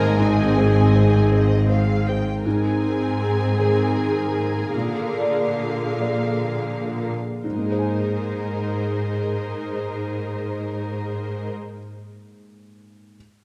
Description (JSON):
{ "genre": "cinematic, emotional film score for orchestra", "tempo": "40-54 BPM (dotted quarters)", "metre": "6/8", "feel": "rubato", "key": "Ab lydian", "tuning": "A4 = 439 Hz", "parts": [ { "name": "warm symphonic violin section", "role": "melody", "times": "0.0-1.3 s", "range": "Ab5 to Bb5", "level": "-34 LUFS", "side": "equal", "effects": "none" }, { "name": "rich symphonic violin section", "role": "second line", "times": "0.0-11.5 s", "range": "Bb4 to Ab5", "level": "-33 LUFS", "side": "equal", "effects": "none" }, { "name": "warm clarinet", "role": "second line", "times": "0.0-1.3 s", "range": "Ab4 to Bb4", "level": "-32 LUFS", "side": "equal", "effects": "none" }, { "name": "clear symphonic viola section", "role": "accompaniment", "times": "0.0-11.5 s", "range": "D3 to Ab4", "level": "-29 LUFS", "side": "equal", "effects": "none" }, { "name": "felt-muted upright piano", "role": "accompaniment", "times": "0.0-13.2 s", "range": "Ab2 to Ab5", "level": "-30 LUFS", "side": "equal", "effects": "none" }, { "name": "concert harp", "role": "arpeggios", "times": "0.0-11.8 s", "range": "Ab2 to C6", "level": "-33 LUFS", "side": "equal", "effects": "none" }, { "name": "clear symphonic double bass section", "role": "bass", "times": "0.0-2.2 s", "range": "Ab1", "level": "-25 LUFS", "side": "equal", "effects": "none" }, { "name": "rich symphonic cello section", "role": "bass", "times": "0.0-11.5 s", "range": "Ab2 to Bb2", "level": "-27 LUFS", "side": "equal", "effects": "none" } ], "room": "moderate scoring stage reverb, RT60 2.0 s", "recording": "none", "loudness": "-22 LUFS", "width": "mono", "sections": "0.0-2.5 A section; 2.5-7.4 B section; 7.4-13.1 C section", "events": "slowing down 1.3-7.4", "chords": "0.2 Ab; 2.5 Abadd9; 4.7 Bb7; 7.4 Abadd9", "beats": "| 0.19 1.31 | 2.45 3.58 | 4.74 5.99 | 7.44 8.87 | 10.29 11.71" }